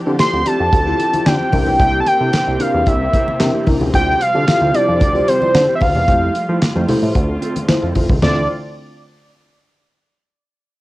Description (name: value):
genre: early-eighties boogie funk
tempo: 112 BPM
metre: 4/4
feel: straight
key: D minor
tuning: A4 = 437 Hz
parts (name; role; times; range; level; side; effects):
- dark studio string section; sustained chords; 0.0-8.5 s; C3 to G4; -25 LUFS; equal; cassette tape
- FM electric piano with soft pad layer; accompaniment; 0.1-8.5 s; D4 to D5; -22 LUFS; left 2 dB; chorus, cassette tape
- mellow electric guitar; riff; 0.1-8.4 s; A3 to A4; -25 LUFS; right 3 dB; lush chorus, cassette tape
- fat analog bass; bass; 0.1-8.5 s; F1 to F3; -20 LUFS; equal; none
- fat analog lead; melody; 0.2-8.5 s; C5 to C6; -16 LUFS; equal; analog delay
- damped 70s drum kit; drums; 0.2-8.4 s; crash cymbal, handclaps, hi-hat, kick drum, snare drum, toms; -18 LUFS; equal; cassette tape
- congas; percussion; 0.2-8.5 s; none; -26 LUFS; left 2 dB; none
room: light reverb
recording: home recording on cassette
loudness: -13 LUFS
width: side -18 dB against mid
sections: 0.0-8.2 A section; 8.2-10.4 B section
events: none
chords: 0.0 Dm11; 1.5 C7; 3.9 Dm11; 6.1 Fmaj9; 7.2 Dm7